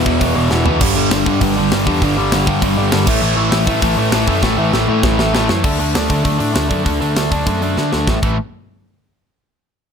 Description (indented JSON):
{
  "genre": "punk rock",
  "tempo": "199 BPM",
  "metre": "4/4",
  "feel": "straight",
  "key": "unclear",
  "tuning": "A4 = 439 Hz",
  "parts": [
    { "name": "high-gain distorted guitar", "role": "riff", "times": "0.0-5.5 s", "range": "E2 to A3", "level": "-20 LUFS", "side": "equal", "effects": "distortion" },
    { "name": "overdriven semi-hollow guitar", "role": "riff", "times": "0.0-8.4 s", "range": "E2 to D4", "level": "-17 LUFS", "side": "equal", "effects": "none" },
    { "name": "overdriven picked electric bass", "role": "bass", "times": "0.0-8.4 s", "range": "E1 to D3", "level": "-20 LUFS", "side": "equal", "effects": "none" },
    { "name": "tight metal drum kit", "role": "drums", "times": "0.1-8.3 s", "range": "crash cymbal, hi-hat, kick drum, snare drum, toms", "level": "-19 LUFS", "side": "equal", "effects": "none" }
  ],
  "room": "little or no reverb",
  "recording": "none",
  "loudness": "-13 LUFS",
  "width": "side -7 dB against mid",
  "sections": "0.0-5.6 A section; 5.6-8.1 B section; 8.1-9.3 C section",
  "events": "drum fill 0.5, 4.4-5.6, 7.8-8.1",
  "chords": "0.0 E5; 0.8 G5; 3.1 A5; 5.6 D; 8.1 A5",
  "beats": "0.21 0.52 | 0.81 1.12 1.42 1.72 | 2.02 2.32 2.62 2.92 | 3.22 3.52 3.83 4.13 | 4.43 4.73 5.03 5.33 | 5.64 5.94 6.24 6.55 | 6.85 7.16 7.46 7.77 | 8.07"
}